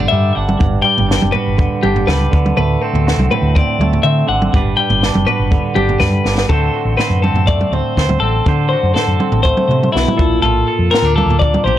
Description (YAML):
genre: math rock and midwest emo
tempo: 122 BPM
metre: 4/4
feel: straight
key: unclear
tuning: A4 = 440 Hz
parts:
  - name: twangy electric guitar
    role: accompaniment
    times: 0.0-11.8 s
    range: G2 to C5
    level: -20 LUFS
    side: right 5 dB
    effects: none
  - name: twelve-string electric guitar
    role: arpeggios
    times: 0.0-11.8 s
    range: E4 to G5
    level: -17 LUFS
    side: left 5 dB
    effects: digital delay
  - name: hollow-body short-scale fingered electric bass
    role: bass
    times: 0.0-11.7 s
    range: F#1 to D3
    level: -16 LUFS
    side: equal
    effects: none
  - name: compact cocktail drum kit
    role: drums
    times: 0.0-11.8 s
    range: kick drum, snare drum, toms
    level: -17 LUFS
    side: right 1 dB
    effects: none
room: light reverb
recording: dark, warm production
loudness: -12 LUFS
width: side -12 dB against mid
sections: 0.0-6.5 A section; 6.5-11.8 B section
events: drum fill 6.2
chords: 0.0 Gmaj7; 2.3 D7; 4.5 Gmaj7; 6.5 D7; 10.2 Bbmaj7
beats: 0.12 | 0.61 1.10 1.59 2.08 | 2.57 3.06 3.55 4.04 | 4.53 5.02 5.51 6.00 | 6.49 6.99 7.48 7.97 | 8.46 8.95 9.45 9.94 | 10.43 10.92 11.41